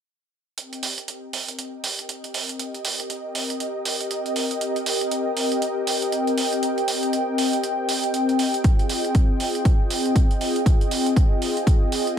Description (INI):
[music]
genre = deep house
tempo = 119 BPM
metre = 4/4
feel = swing 60% on 16ths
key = C minor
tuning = A4 = 440 Hz
[part]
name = warm analog pad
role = sustained chords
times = 0.6-12.2 s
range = C4 to G5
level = -24 LUFS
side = left 1 dB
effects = chorus, vintage 12-bit sampler grit, sidechain pumping
[part]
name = electronic hi-hat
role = drums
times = 0.6-12.2 s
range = none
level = -27 LUFS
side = right 4 dB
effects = overdrive, studio ambience
[part]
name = electronic kick drum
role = drums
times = 8.6-11.8 s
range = none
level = -18 LUFS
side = equal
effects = studio ambience
[sound]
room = moderate plate reverb, RT60 1.3 s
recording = none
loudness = -20 LUFS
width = side -9 dB against mid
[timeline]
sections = 0.6-12.2 A section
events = none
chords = 0.6 Cm7; 8.6 Fm9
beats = | 0.58 1.08 1.58 2.09 | 2.59 3.10 3.60 4.11 | 4.61 5.11 5.62 6.12 | 6.63 7.13 7.63 8.14 | 8.64 9.15 9.65 10.16 | 10.66 11.16 11.67 12.17